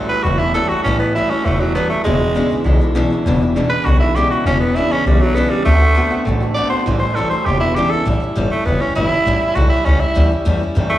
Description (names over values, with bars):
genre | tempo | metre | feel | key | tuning
rockabilly | 200 BPM | 4/4 | straight | A mixolydian | A4 = 440 Hz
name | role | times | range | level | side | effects
picked steel-string acoustic guitar | accompaniment | 0.0-11.0 s | E2 to F#4 | -21 LUFS | left 2 dB | slapback echo
electric guitar through a small old amp | riff | 0.0-8.0 s | E2 to B3 | -23 LUFS | right 2 dB | slapback echo
raspy tenor saxophone | melody | 0.1-11.0 s | F#3 to D5 | -18 LUFS | right 1 dB | slapback echo
upright bass | bass | 0.1-10.9 s | E1 to F#2 | -17 LUFS | equal | none
room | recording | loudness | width
light reverb | live gig heard through the venue's PA, club reverb, small room ambience | -13 LUFS | side -13 dB against mid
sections
0.0-8.1 A section; 8.1-11.0 B section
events
tenor saxophone solo 8.1-11.0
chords
0.0 A7; 2.1 E7; 5.7 D7; 6.9 A7; 7.5 E7; 8.1 A7